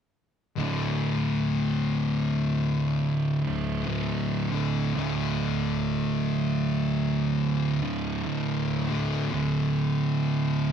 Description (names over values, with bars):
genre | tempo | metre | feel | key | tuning
metal | 55 BPM | 4/4 | swing 61% on 8ths | unclear | A4 = 435 Hz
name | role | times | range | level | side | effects
thick fuzz guitar | riff | 0.6-10.7 s | D2 to D3 | -29 LUFS | left 7 dB | distortion
thick fuzz guitar | riff | 0.6-10.7 s | D2 to D3 | -26 LUFS | right 4 dB | distortion
room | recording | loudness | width
wet studio reverb, RT60 0.5 s | band playing live in one room | -24 LUFS | side -8 dB against mid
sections
0.6-10.7 A section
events
none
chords
0.6 D5